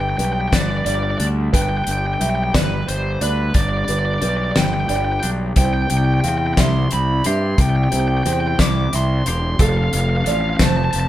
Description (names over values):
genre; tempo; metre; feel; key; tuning
post-rock; 60 BPM (dotted quarters); 6/8; straight; unclear; A4 = 440 Hz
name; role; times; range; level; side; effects
biting lead guitar; melody; 0.0-11.1 s; B4 to D6; -23 LUFS; equal; overdrive
felt-muted upright piano; arpeggios; 0.0-11.1 s; A4 to F5; -28 LUFS; right 5 dB; none
twangy electric guitar; arpeggios; 0.0-11.1 s; F2 to G4; -28 LUFS; left 3 dB; analog delay
fuzz fingered electric bass; bass; 0.0-11.1 s; E1 to G2; -20 LUFS; equal; overdrive
loose indie drum kit; drums; 0.2-11.1 s; hi-hat, kick drum, snare drum; -19 LUFS; equal; none
room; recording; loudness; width
moderate studio reverb, RT60 0.8 s; band playing live in one room; -16 LUFS; side -13 dB against mid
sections
0.0-11.1 A section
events
none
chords
0.0 G; 5.6 C; 9.6 F